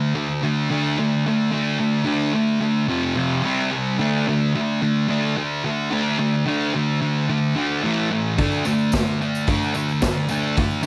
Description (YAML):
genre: garage rock duo or trio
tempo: 109 BPM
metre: 4/4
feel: straight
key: D minor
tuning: A4 = 439 Hz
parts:
  - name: thick fuzz guitar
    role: riff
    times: 0.0-10.9 s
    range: F2 to D4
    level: -22 LUFS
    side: equal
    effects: distortion
  - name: raw garage drum kit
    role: drums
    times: 8.4-10.7 s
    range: hi-hat, kick drum, snare drum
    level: -26 LUFS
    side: equal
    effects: none
  - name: tambourine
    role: percussion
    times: 8.5-10.9 s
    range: none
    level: -42 LUFS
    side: equal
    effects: none
room: light reverb, small room ambience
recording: none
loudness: -21 LUFS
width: mono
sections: 0.0-10.9 A section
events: none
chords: 0.0 D5; 2.9 F5; 3.4 C5; 4.0 D5; 7.8 A5; 8.4 D5